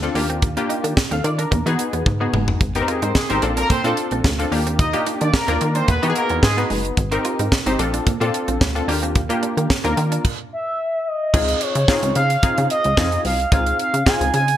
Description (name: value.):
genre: early-eighties boogie funk.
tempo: 110 BPM.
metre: 4/4.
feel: straight.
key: unclear.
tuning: A4 = 439 Hz.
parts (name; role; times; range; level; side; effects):
funky polysynth comp; accompaniment; 0.0-14.5 s; Bb3 to F5; -23 LUFS; left 2 dB; chorus.
plucky analog bass; bass; 0.0-14.6 s; F#1 to E3; -22 LUFS; equal; none.
tight funk drum kit; drums; 0.0-14.6 s; crash cymbal, hi-hat, kick drum, snare drum, toms; -21 LUFS; equal; none.
semi-hollow electric guitar; riff; 0.2-10.2 s; G#3 to F4; -30 LUFS; right 6 dB; wide subtle chorus.
warm horn section; second line; 2.9-6.6 s; Ab3 to Eb5; -23 LUFS; right 1 dB; none.
expressive synth lead; melody; 10.5-14.6 s; Db5 to Ab5; -20 LUFS; right 1 dB; chorus.
room: moderate plate reverb, RT60 1.4 s, studio reverb.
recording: bright 1980s-style digital production.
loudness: -17 LUFS.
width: side -11 dB against mid.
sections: 0.0-11.3 A section; 11.3-14.6 B section.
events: drum fill 2.1-2.6; stop 10.2-11.3.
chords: 0.2 Ebmaj9; 1.5 Emaj9; 2.6 Abmaj9; 3.4 Bbmaj9; 4.5 Ebmaj9; 5.9 Emaj9; 7.0 Abmaj9; 7.8 Bbmaj9; 8.9 Ebmaj9; 10.2 N.C.; 11.3 Dbmaj9.